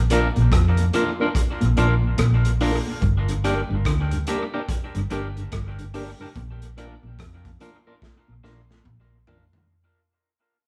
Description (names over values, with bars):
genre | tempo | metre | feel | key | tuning
roots reggae | 72 BPM | 4/4 | swing 62% on 16ths | Bb major | A4 = 440 Hz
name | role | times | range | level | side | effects
vintage muted fingered electric bass | bass | 0.0-9.5 s | G1 to F2 | -25 LUFS | equal | none
electric guitar at the edge of break-up | accompaniment | 0.1-9.4 s | D4 to Bb4 | -30 LUFS | equal | dub echo
mellow tonewheel organ | accompaniment | 0.1-9.6 s | G2 to D4 | -32 LUFS | equal | slow rotary speaker, tube saturation
crunchy breakbeat drum kit | drums | 0.1-9.7 s | hi-hat, kick drum, rim click, snare drum, toms | -29 LUFS | equal | dub echo
mellow electric guitar | riff | 0.4-9.1 s | G2 to F3 | -30 LUFS | equal | spring reverb, dub echo
room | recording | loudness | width
moderate large studio reverb, RT60 1.1 s | band playing live in one room | -22 LUFS | mono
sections
0.0-9.7 A section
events
fade-out 0.0-9.7; drum fill 8.0-9.7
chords
0.0 Bb; 3.0 Gm; 6.4 Bb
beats
0.52 1.35 2.18 | 3.02 3.85 4.68 5.52 | 6.35 7.18 8.02 8.85